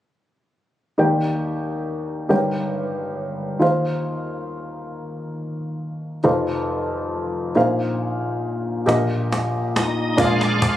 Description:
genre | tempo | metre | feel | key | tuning
slow gospel | 46 BPM (dotted quarters) | 6/8 | straight | Eb major | A4 = 441 Hz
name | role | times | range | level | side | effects
warm upright piano | accompaniment | 1.0-10.8 s | F1 to G5 | -20 LUFS | equal | none
cajon | drums | 8.9-10.8 s | none | -23 LUFS | equal | none
bright tonewheel organ | sustained chords | 9.8-10.8 s | Ab3 to F4 | -21 LUFS | right 2 dB | slow rotary speaker, overdrive, chorus vibrato
room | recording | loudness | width
light reverb | recorded on a phone in the room, studio ambience, compression | -20 LUFS | side -12 dB against mid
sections
1.0-10.8 A section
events
drum fill 8.9-10.8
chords
1.0 Ebmaj7; 2.3 Eb7/G; 3.6 Ab6/Eb; 6.2 F7; 7.6 Bb9sus4; 8.9 Eb/Bb; 10.2 Bb7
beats
| 0.99 2.30 | 3.62 4.93 | 6.24 7.55 | 8.87 10.18

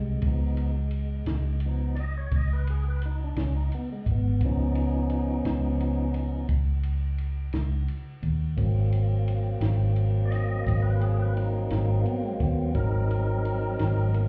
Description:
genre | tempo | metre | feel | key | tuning
slow blues | 58 BPM (dotted quarters) | 12/8 | straight | unclear | A4 = 440 Hz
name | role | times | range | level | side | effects
tonewheel organ | sustained chords | 0.0-14.3 s | C3 to Eb5 | -33 LUFS | equal | slow rotary speaker
vintage muted fingered electric bass | bass | 0.0-14.3 s | Ab1 to Eb2 | -28 LUFS | equal | none
compact cocktail drum kit | drums | 0.2-14.3 s | kick drum, ride cymbal, snare drum | -36 LUFS | equal | none
room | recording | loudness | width
small room ambience | heard muffled through a wall, club reverb, EQ | -27 LUFS | mono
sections
0.0-14.3 A section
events
tonewheel organ solo 0.0-14.3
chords
0.2 Db7; 8.6 Ab7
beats
| 0.24 1.28 2.32 3.37 | 4.41 5.45 6.50 7.54 | 8.58 9.63 10.67 11.71 | 12.76 13.80

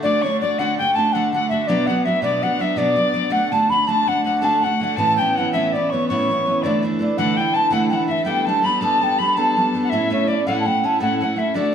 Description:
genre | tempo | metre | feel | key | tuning
celtic folk, Celtic slip jig | 109 BPM (dotted quarters) | 9/8 | straight | D major | A4 = 440 Hz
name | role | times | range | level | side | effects
mellow baroque flute | melody | 0.0-11.7 s | C#5 to B5 | -20 LUFS | right 1 dB | none
mid whistle | second line | 0.0-11.7 s | D5 to C#6 | -24 LUFS | left 6 dB | none
picked steel-string acoustic guitar | accompaniment | 0.0-11.7 s | A2 to A4 | -21 LUFS | equal | none
room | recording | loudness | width
wet recital hall reverb, RT60 1.4 s | none | -17 LUFS | side -8 dB against mid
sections
0.0-11.7 A section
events
none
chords
0.0 D; 1.7 Bm; 3.3 D; 5.0 Aadd9; 6.6 Dsus2; 8.3 Gadd9; 9.9 A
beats
| 0.02 0.57 1.12 | 1.68 2.23 2.78 | 3.33 3.88 4.42 | 4.97 5.52 6.07 | 6.62 7.17 7.72 | 8.26 8.81 9.36 | 9.91 10.46 11.00 | 11.55

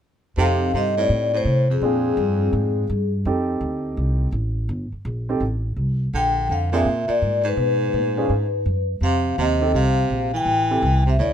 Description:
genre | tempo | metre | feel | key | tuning
jazz, small-group swing and bop | 167 BPM | 4/4 | swing 64% on 8ths | unclear | A4 = 440 Hz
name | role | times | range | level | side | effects
vibraphone with soft mallets | melody | 0.4-3.1, 6.2-11.3 s | Ab4 to G5 | -22 LUFS | left 4 dB | none
clear baritone saxophone | second line | 0.4-3.1, 6.1-11.3 s | F2 to E3 | -26 LUFS | right 5 dB | none
warm grand piano | accompaniment | 0.4-10.8 s | C4 to A4 | -25 LUFS | right 3 dB | none
upright bass | bass | 0.4-11.3 s | G1 to C3 | -22 LUFS | equal | none
room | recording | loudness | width
light reverb | minimal, uncompressed stereo recording | -19 LUFS | side -9 dB against mid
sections
0.4-11.3 A section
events
none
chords
0.4 F7; 1.8 Bb7; 3.3 F7; 4.7 Cm7; 5.4 Am; 6.1 Bb7; 7.6 B5; 9.0 F7(no3); 10.5 Am7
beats
| 0.38 0.74 1.10 1.46 | 1.82 2.18 2.54 2.90 | 3.26 3.62 3.98 4.34 | 4.70 5.06 5.42 5.78 | 6.14 6.50 6.86 7.22 | 7.58 7.94 8.30 8.66 | 9.02 9.38 9.74 10.10 | 10.46 10.82 11.18

